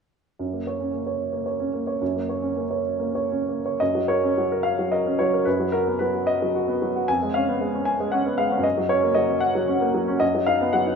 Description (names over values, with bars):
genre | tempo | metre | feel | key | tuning
classical, romantic character piece for solo piano | 58-79 BPM (dotted quarters) | 6/8 | rubato | F# major | A4 = 440 Hz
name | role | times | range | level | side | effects
clear baby grand piano | solo | 0.4-11.0 s | E#2 to G#5 | -21 LUFS | equal | none
room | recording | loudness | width
moderate recital hall reverb, RT60 1.6 s | lossy compression artefacts | -21 LUFS | side -6 dB against mid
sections
0.4-3.8 A section; 3.8-11.0 B section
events
none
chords
0.4 F#; 5.5 B/F#; 7.1 C#7/E#; 8.6 F#; 10.2 B/F#